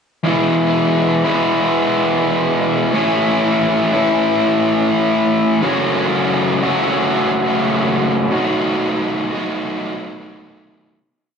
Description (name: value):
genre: rock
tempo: 89 BPM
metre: 4/4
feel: straight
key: E major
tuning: A4 = 440 Hz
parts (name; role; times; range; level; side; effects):
- overdriven electric guitar; solo; 0.2-11.0 s; E2 to F#4; -14 LUFS; equal; tape echo
room: wet small room reverb, RT60 0.5 s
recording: rough rehearsal-room recording, cassette tape, nothing above 10.4 kHz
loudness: -14 LUFS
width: side -6 dB against mid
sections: 0.3-11.0 verse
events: fade-out 8.3-11.0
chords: 0.3 E; 2.9 A; 5.6 F#m; 8.3 B7